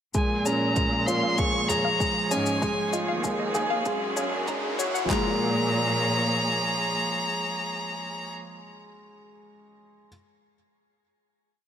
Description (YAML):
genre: piano and strings electronica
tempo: 97 BPM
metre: 4/4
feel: straight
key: Bb minor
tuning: A4 = 441 Hz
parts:
  - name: clear violin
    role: melody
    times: 0.1-8.3 s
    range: Ab5 to Db6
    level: -28 LUFS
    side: equal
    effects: low-pass filter, digital delay, shimmer reverb
  - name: analog pluck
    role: arpeggios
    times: 0.1-5.4 s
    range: Ab4 to Db6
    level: -34 LUFS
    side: left 3 dB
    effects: chorus, phaser, sidechain pumping, digital delay, shimmer reverb
  - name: felt-muted upright piano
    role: riff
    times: 0.1-10.1 s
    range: Ab3 to Ab4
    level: -30 LUFS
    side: equal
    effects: digital delay, shimmer reverb
  - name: muted chamber cello section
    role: bass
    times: 0.1-6.9 s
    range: Eb2 to Bb2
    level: -31 LUFS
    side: equal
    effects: sidechain pumping
  - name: deep house drum kit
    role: drums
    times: 0.1-5.2 s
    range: handclaps, kick drum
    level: -29 LUFS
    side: equal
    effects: none
  - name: shaker and toms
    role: drums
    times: 0.1-5.1 s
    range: none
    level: -35 LUFS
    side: left 2 dB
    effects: none
  - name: riser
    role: sound effects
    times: 3.4-5.1 s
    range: none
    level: -37 LUFS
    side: equal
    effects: none
  - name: rich string quartet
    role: sustained chords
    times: 0.2-8.3 s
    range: F3 to Db5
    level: -33 LUFS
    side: right 2 dB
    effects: sidechain pumping, low-pass filter, shimmer reverb
room: moderate lush hall reverb, RT60 1.8 s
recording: high-pass filter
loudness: -23 LUFS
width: side -9 dB against mid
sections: 0.1-5.1 build; 5.1-7.6 final chord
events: build-up 0.1-5.1; filter sweep on string quartet 0.1-5.1; filter sweep on synth arpeggio sound 0.1-5.1; riser 3.4-5.1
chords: 0.1 Bbm7; 2.6 Dbadd9; 3.9 Gbadd9; 5.1 Bbm7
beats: | 0.15 0.77 1.39 2.00 | 2.62 3.24 3.86 4.48 | 5.10 5.71 6.33 6.95